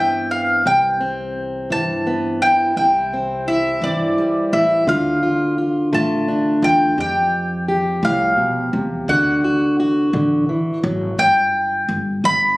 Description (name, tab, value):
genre	indie folk with a building arrangement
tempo	57 BPM (dotted quarters)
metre	6/8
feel	straight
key	unclear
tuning	A4 = 443 Hz
part	mandolin	melody	0.0-12.6 s	D5 to B5	-18 LUFS	equal	none
part	fingerpicked plugged-in steel-string acoustic guitar	accompaniment	0.0-11.2 s	F2 to G4	-19 LUFS	equal	none
part	upright bass	bass	0.0-12.6 s	G1 to G2	-27 LUFS	equal	none
room	moderate recital hall reverb, RT60 1.4 s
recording	recorded on a phone in the room, club reverb, compression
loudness	-16 LUFS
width	side -21 dB against mid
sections	0.0-2.8 A section; 2.8-11.2 B section; 11.2-12.6 C section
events	none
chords	0.0 Cmaj7; 2.8 C; 4.9 Dm; 7.0 Fadd9; 9.1 D; 11.2 G